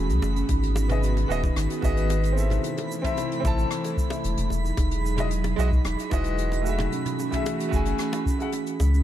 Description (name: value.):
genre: sunset chillout.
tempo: 112 BPM.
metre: 4/4.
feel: straight.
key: E major.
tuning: A4 = 441 Hz.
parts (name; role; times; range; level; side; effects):
warm baby grand piano; accompaniment; 0.0-8.5 s; E3 to A5; -30 LUFS; moving between left 4 dB and right 4 dB; auto-pan, ping-pong delay.
airy breathy pad; sustained chords; 0.0-9.0 s; C3 to G#4; -32 LUFS; right 1 dB; chorus.
warm sub bass; bass; 0.0-9.0 s; D#1 to C#2; -24 LUFS; equal; none.
twinkling granular texture; texture; 0.0-9.0 s; B5; -37 LUFS; right 5 dB; built-in reverb.
jazz brush drum kit; drums; 0.1-9.0 s; hi-hat, rim click, shaker, toms; -36 LUFS; equal; none.
bongos; percussion; 0.2-8.9 s; none; -38 LUFS; left 1 dB; none.
buzzing kalimba; arpeggios; 0.4-9.0 s; C#4 to E5; -33 LUFS; right 4 dB; ping-pong delay.
electronic kick drum; drums; 0.5-8.4 s; none; -26 LUFS; equal; none.
room: light reverb.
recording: dark, warm production.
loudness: -22 LUFS.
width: side -12 dB against mid.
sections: 0.0-9.0 A section.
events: none.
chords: 0.5 G#m7; 2.6 Am; 4.5 Emaj9; 6.9 F#m9.